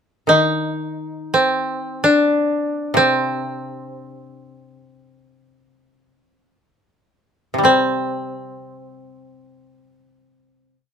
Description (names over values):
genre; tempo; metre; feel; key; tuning
japanese traditional, Japanese chamber music; free time; none; none; C minor; A4 = 440 Hz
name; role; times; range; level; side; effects
koto; melody; 0.3-10.7 s; C4 to Eb4; -17 LUFS; equal; none
koto; accompaniment; 0.3-10.9 s; C3 to C4; -22 LUFS; left 2 dB; none
room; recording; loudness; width
light reverb; none; -16 LUFS; side -7 dB against mid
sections
0.0-7.6 free-time section; 7.6-10.9 final chord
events
slowing down 3.1-7.6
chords
none